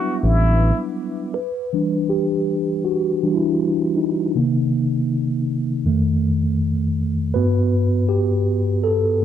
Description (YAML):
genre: hip hop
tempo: 80 BPM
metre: 4/4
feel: swing 60% on 16ths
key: unclear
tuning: A4 = 441 Hz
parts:
  - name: trumpet with plunger mute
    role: melody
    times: 0.0-0.8 s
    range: E4 to F#4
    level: -25 LUFS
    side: equal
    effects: low-pass filter
  - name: mellow tine electric piano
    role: accompaniment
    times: 0.0-9.2 s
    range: F2 to B4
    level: -18 LUFS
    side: equal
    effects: medium stereo tremolo, low-pass filter
  - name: warm analog pad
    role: sustained chords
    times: 0.0-1.3 s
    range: B4 to D6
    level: -39 LUFS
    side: right 1 dB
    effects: chorus, low-pass filter
  - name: smooth synth bass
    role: bass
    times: 0.2-0.7 s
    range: A1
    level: -15 LUFS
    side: equal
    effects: none
room: moderate studio ambience, RT60 0.5 s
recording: dark, warm production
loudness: -18 LUFS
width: side -10 dB against mid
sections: 0.0-1.3 A section; 1.3-9.2 B section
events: tine electric piano solo 1.3-9.2; filter sweep on tine electric piano 1.3-9.2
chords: 0.0 Em7; 4.3 Cm7; 5.8 F7; 7.3 Gmaj9